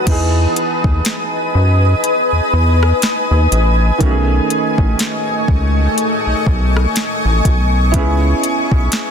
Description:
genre	contemporary R&B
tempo	61 BPM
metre	4/4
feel	swing 58% on 16ths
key	unclear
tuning	A4 = 444 Hz
part	warm concert grand piano	accompaniment	0.0-9.1 s	D#3 to G#4	-22 LUFS	right 5 dB	none
part	granular cloud pad	sustained chords	0.0-9.1 s	A3 to D#6	-18 LUFS	left 2 dB	built-in reverb, sidechain pumping
part	rubbery square bass	bass	0.1-8.9 s	A1 to F#2	-14 LUFS	equal	none
part	smooth R&B drum kit	drums	0.1-9.1 s	crash cymbal, hi-hat, kick drum, rim click, snare drum	-18 LUFS	equal	overdrive
room	little or no reverb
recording	dense, heavily limited modern master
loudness	-12 LUFS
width	side -7 dB against mid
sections	0.1-9.1 A section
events	none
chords	0.1 Emaj7; 4.0 B13; 7.9 C#m7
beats	| 0.07 1.05 2.04 3.02 | 4.01 4.99 5.97 6.96 | 7.94 8.92

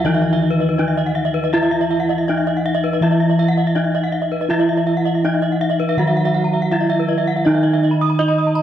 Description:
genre	Balinese gamelan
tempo	81 BPM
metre	4/4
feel	straight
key	unclear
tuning	A4 = 440 Hz
part	gamelan-type bronze metallophone	melody	0.0-8.6 s	Eb4 to Eb5	-21 LUFS	equal	none
part	gamelan-type bronze metallophone	accompaniment	0.0-8.6 s	Eb3 to Gb3-30c	-22 LUFS	right 2 dB	none
part	gamelan-type bronze metallophone	arpeggios	0.0-8.6 s	Cb5-20c to Eb6	-23 LUFS	left 5 dB	none
part	gamelan-type bronze metallophone	arpeggios	0.0-8.5 s	Eb5 to Eb6	-24 LUFS	right 4 dB	none
part	gamelan-type bossed gongs	bass	0.0-8.6 s	Eb3 to Gb4-30c	-20 LUFS	equal	none
room	wet concert hall reverb, RT60 1.8 s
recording	worn, warbling old tape, cassette tape, warbly pitch drift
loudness	-15 LUFS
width	side -10 dB against mid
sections	0.0-8.6 A section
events	none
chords	none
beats	0.05 0.79 | 1.53 2.27 3.01 3.75 | 4.50 5.24 5.98 6.72 | 7.46 8.20

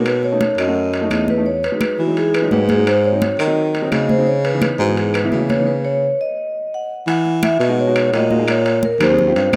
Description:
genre	Afro-Cuban jazz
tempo	171 BPM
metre	4/4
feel	straight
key	C# minor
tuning	A4 = 439 Hz
part	warm upright piano	accompaniment	0.0-9.6 s	E3 to G#4	-26 LUFS	equal	none
part	breathy baritone saxophone	bass	0.0-9.6 s	D#2 to E3	-21 LUFS	equal	none
part	vibraphone with medium hard mallets	melody	0.1-9.6 s	F#4 to F#5	-21 LUFS	equal	none
part	claves	percussion	0.1-9.6 s	none	-32 LUFS	equal	none
part	congas	percussion	0.1-9.6 s	none	-25 LUFS	equal	none
part	timbales	percussion	0.1-9.6 s	none	-29 LUFS	equal	none
room	light reverb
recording	rough home demo mix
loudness	-17 LUFS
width	mono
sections	0.0-7.1 A section; 7.1-9.6 B section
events	stop 5.7-7.1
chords	0.1 B9; 1.5 Emaj9; 2.9 G#7; 4.3 C#m9; 6.4 N.C.; 7.1 Emaj9; 8.5 A#m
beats	| 0.06 0.41 0.76 1.11 | 1.46 1.81 2.16 2.51 | 2.87 3.22 3.57 3.92 | 4.27 4.62 4.97 5.32 | 5.67 6.03 6.38 6.73 | 7.08 7.43 7.78 8.13 | 8.48 8.83 9.18 9.53

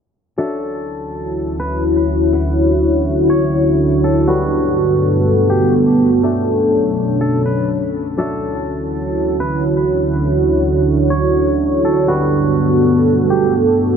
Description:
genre	hip hop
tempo	123 BPM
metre	4/4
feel	half-time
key	D major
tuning	A4 = 440 Hz
part	twangy electric guitar	melody	0.4-13.5 s	F#4 to C#5	-25 LUFS	left 1 dB	digital delay
part	dark analog pad	sustained chords	1.1-14.0 s	D2 to C#5	-14 LUFS	right 1 dB	chorus
part	kora	texture	0.4-14.0 s	G3 to F#5	-26 LUFS	left 3 dB	none
room	moderate huge ambient reverb, RT60 8.6 s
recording	low-pass filter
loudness	-13 LUFS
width	side -7 dB against mid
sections	0.4-14.0 A section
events	filter sweep 0.4-14.0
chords	0.4 Dmaj9; 4.3 Gmaj9; 6.2 Bm7; 8.2 Dmaj9; 12.1 Gmaj9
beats	| 0.38 0.87 1.36 1.84 | 2.33 2.82 3.31 3.79 | 4.28 4.77 5.26 5.75 | 6.23 6.72 7.21 7.70 | 8.19 8.67 9.16 9.65 | 10.14 10.62 11.11 11.60 | 12.09 12.57 13.06 13.55

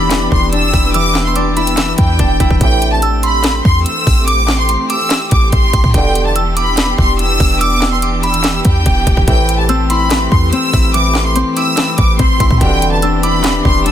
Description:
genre	hip hop, trap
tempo	144 BPM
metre	4/4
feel	half-time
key	A minor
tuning	A4 = 441 Hz
part	clear studio violin section	melody	0.0-13.9 s	G5 to E6	-17 LUFS	left 1 dB	none
part	glassy synth bell	second line	0.0-13.9 s	B5 to E6	-22 LUFS	right 4 dB	chorus, ping-pong delay
part	Celtic harp	accompaniment	0.0-5.0, 9.3-13.9 s	E3 to E4	-19 LUFS	left 6 dB	none
part	dark studio string section	sustained chords	0.0-13.9 s	E3 to G4	-22 LUFS	right 1 dB	none
part	clean 808-style bass	bass	0.0-13.9 s	E1 to A2	-16 LUFS	equal	none
part	trap drum kit	drums	0.1-13.9 s	handclaps, hi-hat, kick drum, snare drum	-15 LUFS	equal	none
part	warm brass ensemble	stabs	2.6-3.0, 5.9-6.3, 9.3-9.7, 12.6-13.0 s	G2 to E3	-21 LUFS	right 4 dB	none
room	small room reverb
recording	dense, heavily limited modern master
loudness	-10 LUFS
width	side -10 dB against mid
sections	0.0-2.6 A section; 2.6-13.9 A section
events	none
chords	0.0 Em7; 2.6 Am7; 5.9 Em7; 9.3 Am7; 12.6 Em7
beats	0.11 0.53 | 0.94 1.36 1.78 2.19 | 2.61 3.03 3.44 3.86 | 4.28 4.69 5.11 5.53 | 5.94 6.36 6.78 7.19 | 7.61 8.03 8.44 8.86 | 9.28 9.69 10.11 10.53 | 10.94 11.36 11.78 12.19 | 12.61 13.03 13.44 13.86

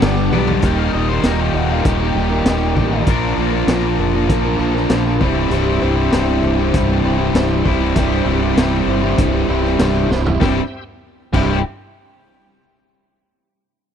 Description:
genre	classic rock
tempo	98 BPM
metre	4/4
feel	straight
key	unclear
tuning	A4 = 440 Hz
part	picked plugged-in twelve-string acoustic guitar	accompaniment	0.0-11.6 s	G2 to C5	-25 LUFS	left 2 dB	none
part	distorted electric guitar	riff	0.0-0.6 s	G2 to G3	-22 LUFS	left 2 dB	distortion
part	overdriven semi-hollow guitar	riff	0.0-11.6 s	C2 to Bb4	-20 LUFS	right 11 dB	none
part	tight distorted guitar	riff	0.0-11.6 s	C2 to Bb4	-20 LUFS	left 13 dB	distortion
part	modern bright fingered electric bass	bass	0.0-11.6 s	C1 to B1	-20 LUFS	equal	none
part	raw garage drum kit	drums	0.0-11.5 s	crash cymbal, hi-hat, kick drum, ride cymbal, snare drum, toms	-19 LUFS	equal	none
part	octave-fuzz lead guitar	second line	0.6-3.0, 10.4-11.6 s	F4 to G5	-27 LUFS	left 4 dB	distortion
part	bright tonewheel organ	sustained chords	5.2-10.8 s	A3 to E5	-34 LUFS	equal	none
room	small room reverb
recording	dry, close 1970s-style studio recording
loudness	-14 LUFS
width	side -8 dB against mid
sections	0.6-10.4 A section; 10.4-12.9 B section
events	drum fill 0.3-0.6, 10.1-10.4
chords	0.0 G; 0.6 Eb; 3.1 Bb; 5.2 C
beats	0.01 | 0.62 1.23 1.84 2.46 | 3.07 3.68 4.29 4.90 | 5.51 6.13 6.74 7.35 | 7.96 8.57 9.19 9.80 | 10.41 11.02

